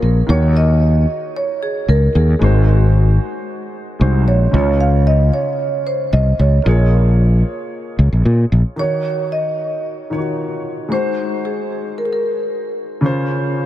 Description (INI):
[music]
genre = afrobeats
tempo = 113 BPM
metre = 4/4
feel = straight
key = Eb dorian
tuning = A4 = 442 Hz
[part]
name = marimba with medium mallets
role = melody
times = 0.0-12.7 s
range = Ab4 to F5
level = -22 LUFS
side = right 2 dB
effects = diffuse ambient delay
[part]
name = warm baby grand piano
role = accompaniment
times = 0.0-13.7 s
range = Db3 to Db5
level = -22 LUFS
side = left 1 dB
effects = lush chorus
[part]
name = fretless electric bass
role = bass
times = 0.0-8.6 s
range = Ab1 to Bb2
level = -12 LUFS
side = equal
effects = none
[sound]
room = light reverb, small room reverb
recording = none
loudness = -14 LUFS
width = side -13 dB against mid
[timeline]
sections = 0.0-8.8 A section; 8.8-13.7 B section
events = none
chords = 0.3 Ebm7; 2.4 Ab7; 4.5 Db; 6.7 Bbm7; 8.8 Ebm7; 10.9 Ab7; 13.0 Dbmaj7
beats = | 0.29 0.82 1.35 1.88 | 2.42 2.95 3.48 4.01 | 4.54 5.07 5.60 6.13 | 6.66 7.19 7.72 8.26 | 8.79 9.32 9.85 10.38 | 10.91 11.44 11.97 12.50 | 13.03 13.56